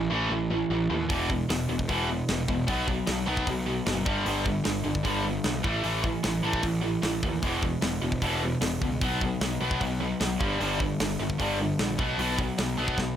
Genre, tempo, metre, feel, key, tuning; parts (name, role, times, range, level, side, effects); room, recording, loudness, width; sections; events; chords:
punk rock; 152 BPM; 4/4; straight; A4 = 445 Hz
tight distorted guitar; riff; 0.0-13.2 s; E2 to B3; -27 LUFS; equal; distortion
fuzz picked electric bass; bass; 0.0-13.2 s; E1 to D#2; -32 LUFS; equal; overdrive
tight metal drum kit; drums; 1.1-13.1 s; hi-hat, kick drum, snare drum; -31 LUFS; equal
little or no reverb; -25 LUFS; side -10 dB against mid
0.0-13.2 A section
drum fill 13.0
0.0 A5; 1.1 E5; 2.7 B5; 4.1 G5; 5.6 A5; 7.4 E5; 9.0 B5; 10.4 G5; 12.0 B5